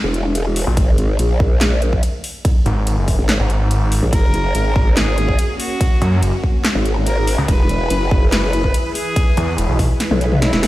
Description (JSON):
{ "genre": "heavy wobble dubstep", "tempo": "143 BPM", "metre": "4/4", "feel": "half-time", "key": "unclear", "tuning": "A4 = 440 Hz", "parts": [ { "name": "growl bass", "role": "bass", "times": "0.0-10.7 s", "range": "Fb1 to B1", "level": "-17 LUFS", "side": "equal", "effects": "chorus, overdrive" }, { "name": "big-room dance drum kit", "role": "drums", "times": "0.1-10.7 s", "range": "handclaps, hi-hat, ride cymbal, snare drum, toms", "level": "-22 LUFS", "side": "equal", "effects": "none" }, { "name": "snarling distorted saw bass", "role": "bass", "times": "0.7-9.9 s", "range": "E1 to Gb2", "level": "-16 LUFS", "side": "equal", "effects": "distortion, overdrive" }, { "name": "electronic kick drum", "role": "drums", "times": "0.8-9.9 s", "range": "none", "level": "-15 LUFS", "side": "equal", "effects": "none" }, { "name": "rich cello", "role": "melody", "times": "4.1-10.7 s", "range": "E4 to B4", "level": "-24 LUFS", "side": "left 1 dB", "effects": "digital delay" }, { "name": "supersaw pad", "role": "sustained chords", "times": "4.1-10.7 s", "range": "E3 to B4", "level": "-26 LUFS", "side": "equal", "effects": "phaser, sidechain pumping, low-pass filter" } ], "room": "digital ambience", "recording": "played on a big sound system in a bare room, stone room reverb", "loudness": "-14 LUFS", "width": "side -16 dB against mid", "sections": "0.0-10.7 A section", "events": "drum fill 10.0-10.7; kick drops out 10.4", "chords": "0.0 N.C.; 0.8 Gbadd9 (rootless); 4.1 Gb; 7.5 E" }